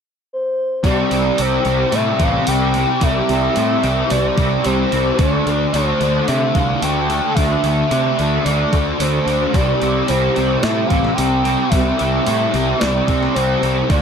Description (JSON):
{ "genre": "rock, shoegaze and dream pop", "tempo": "110 BPM", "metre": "4/4", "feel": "straight", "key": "C major", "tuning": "A4 = 439 Hz", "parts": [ { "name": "pure breathy sine lead", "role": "melody", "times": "0.3-14.0 s", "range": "C5 to G5", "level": "-21 LUFS", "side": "left 1 dB", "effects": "chorus, digital delay" }, { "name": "fuzz guitar", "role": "riff", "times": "0.8-14.0 s", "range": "C3 to D4", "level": "-18 LUFS", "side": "equal", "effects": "distortion, ensemble chorus" }, { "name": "fuzz picked electric bass", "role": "bass", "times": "0.8-14.0 s", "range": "A1 to C3", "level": "-20 LUFS", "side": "equal", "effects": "overdrive" }, { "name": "crisp 8-bit digital drum machine", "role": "drums", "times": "0.8-14.0 s", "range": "hi-hat, kick drum, snare drum", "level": "-21 LUFS", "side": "equal", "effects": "overdrive" } ], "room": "little or no reverb", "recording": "none", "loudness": "-14 LUFS", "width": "side -7 dB against mid", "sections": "0.8-14.0 A section", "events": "none", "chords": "0.0 N.C.; 0.8 C; 5.2 D5; 9.5 C" }